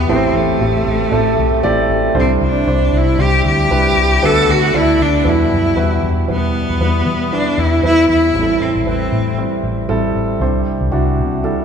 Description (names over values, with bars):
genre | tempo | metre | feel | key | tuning
piano-driven pop | 116 BPM | 4/4 | swing 56% on 16ths | E minor | A4 = 441 Hz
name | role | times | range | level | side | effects
clear cello | melody | 0.0-9.4 s | A3 to A4 | -16 LUFS | left 1 dB | none
dark baby grand piano | accompaniment | 0.0-11.6 s | A2 to D5 | -17 LUFS | right 2 dB | none
vintage muted fingered electric bass | bass | 0.0-11.5 s | A1 to E3 | -18 LUFS | left 1 dB | none
room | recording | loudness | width
wet church reverb, RT60 3.5 s | recorded in a church or concert hall | -12 LUFS | side -7 dB against mid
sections
0.0-6.3 A section; 6.3-11.6 B section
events
none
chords
0.1 Am7; 2.2 Cadd9; 4.2 D6; 5.3 Emadd9; 6.3 Em; 8.4 Am7; 10.4 Cadd9